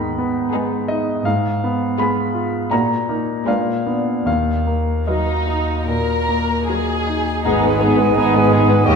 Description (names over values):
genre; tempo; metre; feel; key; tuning
classical; 73-84 BPM; 4/4; rubato; Eb minor; A4 = 442 Hz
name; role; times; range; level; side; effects
clear concert grand piano; melody; 0.0-9.0 s; Eb2 to Cb6; -19 LUFS; left 1 dB; none
muted symphonic cello section; bass; 0.0-9.0 s; Eb2 to Bb2; -24 LUFS; right 2 dB; none
muted symphonic violin section; melody; 0.5-9.0 s; Gb4 to D#5; -23 LUFS; left 5 dB; none
muted symphonic violin section; second line; 0.5-9.0 s; B3 to Bb4; -23 LUFS; equal; none
muted symphonic viola section; accompaniment; 0.5-9.0 s; Gb3 to Cb4; -25 LUFS; right 3 dB; none
mellow French horn section; sustained chords; 7.4-9.0 s; B3 to G#4; -28 LUFS; left 4 dB; none
muted symphonic double bass section; bass; 7.4-9.0 s; G#1 to D#2; -25 LUFS; right 2 dB; none
bright silver concert flute; second line; 7.5-9.0 s; G5 to G#5; -25 LUFS; right 2 dB; none
mellow cor anglais; second line; 7.5-9.0 s; C#5 to D#5; -23 LUFS; right 5 dB; none
warm clarinet; second line; 7.5-9.0 s; D#4; -24 LUFS; right 4 dB; none
warm bassoon; accompaniment; 7.5-9.0 s; A#3 to B3; -23 LUFS; right 3 dB; none
room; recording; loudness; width
wet scoring stage reverb, RT60 1.5 s; minimal, uncompressed stereo recording; -16 LUFS; side -6 dB against mid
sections
0.0-7.5 A section; 7.5-9.0 B section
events
none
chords
0.0 Abm; 1.2 Fdim/Ab; 2.7 Ebm/Bb; 3.5 Bb7b9; 4.3 Ebm; 7.5 G#m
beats
0.53 | 1.25 1.99 2.72 3.47 | 4.26 5.08 5.89 6.68 | 7.45 8.17 8.88